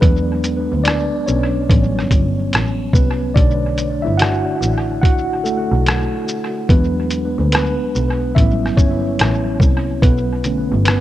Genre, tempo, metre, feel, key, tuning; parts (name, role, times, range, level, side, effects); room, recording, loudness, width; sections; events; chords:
lo-fi hip hop; 72 BPM; 4/4; swing 65% on 16ths; B minor; A4 = 440 Hz
mellow tine electric piano; accompaniment; 0.0-11.0 s; D3 to F#5; -19 LUFS; equal; medium stereo tremolo, analog delay
clear double bass; bass; 0.0-10.8 s; G1 to E2; -19 LUFS; equal
lo-fi sampler-style drum kit; drums; 0.0-11.0 s; hi-hat, kick drum, rim click, shaker; -16 LUFS; equal
light reverb; echo-heavy mix, cassette tape; -14 LUFS; side -14 dB against mid
0.0-11.0 A section
tine electric piano solo 0.0-11.0
0.0 E9; 1.7 A13; 3.4 Bm7; 6.7 E9; 8.4 A13; 10.0 Bm7